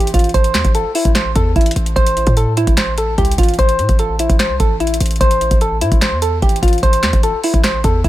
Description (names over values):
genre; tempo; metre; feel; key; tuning
hip hop, trap; 148 BPM; 4/4; half-time; A minor; A4 = 442 Hz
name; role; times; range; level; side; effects
soft electric-piano-like synth keys; melody; 0.0-8.1 s; E4 to C5; -17 LUFS; equal; chorus, digital delay
warm 808-style bass; bass; 0.0-8.1 s; A1 to A2; -18 LUFS; equal; none
booming analog drum machine; drums; 0.0-8.1 s; handclaps, hi-hat, kick drum, snare drum; -16 LUFS; equal; overdrive
room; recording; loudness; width
little or no reverb; none; -12 LUFS; side -15 dB against mid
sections
0.0-8.1 A section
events
none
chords
0.0 Am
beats
| 0.34 0.75 1.15 1.56 | 1.96 2.37 2.77 3.18 | 3.58 3.99 4.40 4.80 | 5.21 5.61 6.02 6.42 | 6.83 7.23 7.64 8.04